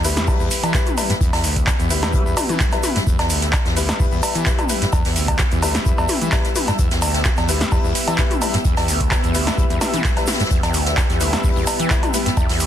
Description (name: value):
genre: acid house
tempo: 129 BPM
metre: 4/4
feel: swing 53% on 16ths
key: E minor pentatonic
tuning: A4 = 442 Hz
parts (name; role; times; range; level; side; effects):
- overdriven acid bass; riff; 0.0-12.7 s; D2 to G3; -23 LUFS; equal; distortion, tube saturation, wide subtle chorus, sidechain pumping, ping-pong delay
- clear grand piano; stabs; 0.0-12.3 s; G3 to B4; -28 LUFS; left 6 dB; ping-pong delay
- electro analog drum machine; drums; 0.0-12.7 s; cowbell, handclaps, hi-hat, snare drum, toms; -22 LUFS; equal; overdrive
- jazz brush drum kit; drums; 0.0-12.7 s; hi-hat, snare drum; -30 LUFS; left 2 dB; sidechain pumping on hats, high-pass filter on hats, soft clipping on snare, high-pass filter on snare, high-pass filter on room
- tube shaker; percussion; 0.0-12.7 s; none; -31 LUFS; right 1 dB; none
- granular cloud pad; texture; 0.0-12.7 s; B3 to E6; -28 LUFS; equal; built-in reverb, sidechain pumping
- electronic kick drum; drums; 0.3-12.5 s; none; -20 LUFS; equal; overdrive
room: light reverb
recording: dense, heavily limited modern master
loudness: -16 LUFS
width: side -10 dB against mid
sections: 0.0-12.7 A section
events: none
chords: 0.0 Em